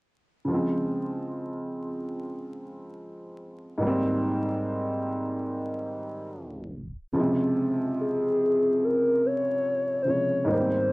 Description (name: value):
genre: lo-fi hip hop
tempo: 72 BPM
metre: 4/4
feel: swing 61% on 16ths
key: Bb dorian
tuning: A4 = 441 Hz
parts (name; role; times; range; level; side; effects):
- dark upright piano; accompaniment; 0.4-10.9 s; Ab2 to C4; -27 LUFS; equal; cassette tape
- warbly nostalgic lead; melody; 8.0-10.9 s; Ab4 to Db5; -24 LUFS; left 1 dB; chorus, cassette tape
room: moderate studio reverb, RT60 0.6 s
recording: home recording on cassette, vinyl crackle, tape stop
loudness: -24 LUFS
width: side -23 dB against mid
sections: 0.5-7.1 A section; 7.1-10.9 B section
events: tape stop 6.3-7.1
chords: 0.5 Dbmaj7; 3.8 Abmaj9; 7.1 Bbm9/C (rootless)